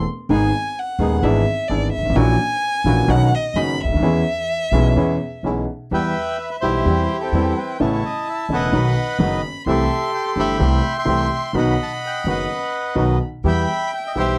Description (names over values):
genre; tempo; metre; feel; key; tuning
tango; 128 BPM; 4/4; rubato; E major, E harmonic minor from 5.9 s; A4 = 440 Hz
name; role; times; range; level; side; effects
warm violin; second line; 0.0-14.4 s; D5 to C6; -28 LUFS; equal; none
warm upright piano; accompaniment; 0.0-14.4 s; D#1 to G#4; -23 LUFS; equal; none
bandoneon; stabs; 0.0-14.4 s; F#3 to G#4; -31 LUFS; equal; none
upright bass; bass; 0.0-14.4 s; E1 to E2; -24 LUFS; equal; none
bandoneon; melody; 5.9-14.4 s; C4 to C6; -25 LUFS; equal; none
room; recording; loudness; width
little or no reverb; dry, close 1970s-style studio recording; -20 LUFS; mono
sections
0.0-5.9 A section; 5.9-14.4 B section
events
violin solo 0.0-5.9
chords
0.3 G#m; 1.2 E7/G#; 2.2 F#7/A#; 3.1 Badd9; 4.0 E6; 5.9 Em; 6.9 C/E; 7.8 Aadd9; 8.7 B; 9.7 C6; 10.6 Am7/C; 11.5 B; 13.4 Em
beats
| 0.31 0.77 1.24 1.70 | 2.16 2.62 3.09 3.56 | 4.02 4.50 4.97 5.44 | 5.92 6.39 6.87 7.34 | 7.80 8.27 8.73 9.20 | 9.66 10.13 10.60 11.07 | 11.54 12.02 12.49 12.97 | 13.45 13.93